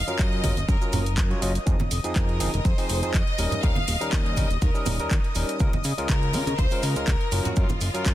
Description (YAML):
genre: nu-disco, nu disco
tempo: 122 BPM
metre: 4/4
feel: swing 54% on 16ths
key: unclear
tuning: A4 = 440 Hz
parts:
  - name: clear chamber violin section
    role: melody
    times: 0.0-8.1 s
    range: F4 to F5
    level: -32 LUFS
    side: left 2 dB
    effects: tape echo
  - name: lush unison pad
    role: sustained chords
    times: 0.0-8.1 s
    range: Eb5 to Eb6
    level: -36 LUFS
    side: equal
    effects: chorus, phaser, sidechain pumping
  - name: fat analog bass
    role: bass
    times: 0.0-8.1 s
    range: Eb1 to Db3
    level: -27 LUFS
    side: equal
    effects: tube saturation
  - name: overdriven tine electric piano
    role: accompaniment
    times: 0.1-8.1 s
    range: F3 to Eb5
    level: -31 LUFS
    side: equal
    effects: sidechain pumping
  - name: house drum kit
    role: drums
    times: 0.1-8.1 s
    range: handclaps, hi-hat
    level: -32 LUFS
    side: left 1 dB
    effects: none
  - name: maracas and congas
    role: percussion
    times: 0.1-8.1 s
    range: none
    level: -32 LUFS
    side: right 3 dB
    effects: none
  - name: electronic kick drum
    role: drums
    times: 0.2-8.1 s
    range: none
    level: -23 LUFS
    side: equal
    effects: none
room: little or no reverb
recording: dense, heavily limited modern master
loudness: -21 LUFS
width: side -14 dB against mid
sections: 0.0-8.1 A section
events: none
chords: 0.0 Gbmaj7; 1.7 Fm7; 3.4 Eb7; 5.6 Db6; 7.3 Gbmaj7